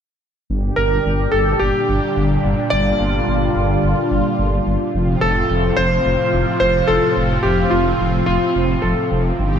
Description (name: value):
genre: synthwave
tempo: 108 BPM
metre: 4/4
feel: straight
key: G minor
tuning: A4 = 440 Hz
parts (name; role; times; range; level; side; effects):
- warm analog pad; sustained chords; 0.5-9.6 s; A2 to G4; -19 LUFS; equal; chorus
- dark detuned saw bass; bass; 0.5-9.6 s; F1 to G1; -20 LUFS; equal; none
- warm electric grand piano; melody; 0.8-9.2 s; F4 to D5; -19 LUFS; left 1 dB; analog chorus, ping-pong delay
room: moderate lush hall reverb, RT60 2.1 s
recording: bright 1980s-style digital production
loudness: -15 LUFS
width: side -8 dB against mid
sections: 0.5-9.6 A section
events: none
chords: 0.5 Gm; 4.9 F